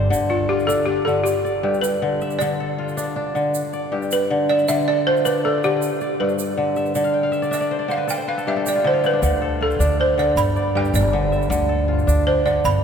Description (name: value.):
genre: west african traditional, West African string and xylophone music.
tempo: 105 BPM (dotted quarters).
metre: 12/8.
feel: straight.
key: D dorian.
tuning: A4 = 440 Hz.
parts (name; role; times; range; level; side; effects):
kora; arpeggios; 0.0-12.8 s; G2 to G5; -21 LUFS; left 1 dB; none.
upright bass; bass; 0.0-0.1, 9.2-12.8 s; G1 to D2; -22 LUFS; equal; none.
tube shaker; percussion; 0.1-12.7 s; none; -35 LUFS; right 7 dB; none.
balafon; melody; 0.3-12.8 s; F4 to B5; -22 LUFS; right 1 dB; none.
room: wet cathedral reverb, RT60 6.2 s.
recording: recorded in a church or concert hall.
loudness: -18 LUFS.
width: side -7 dB against mid.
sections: 0.1-12.8 A section.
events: balafon solo 0.1-12.8; kora fill 7.1-9.2.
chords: 0.1 Dm; 1.3 G; 2.4 Dm; 3.5 G; 4.7 Dm; 5.8 G5; 7.0 Dm11; 8.1 G5; 9.2 Dm; 10.4 G; 11.5 Dm.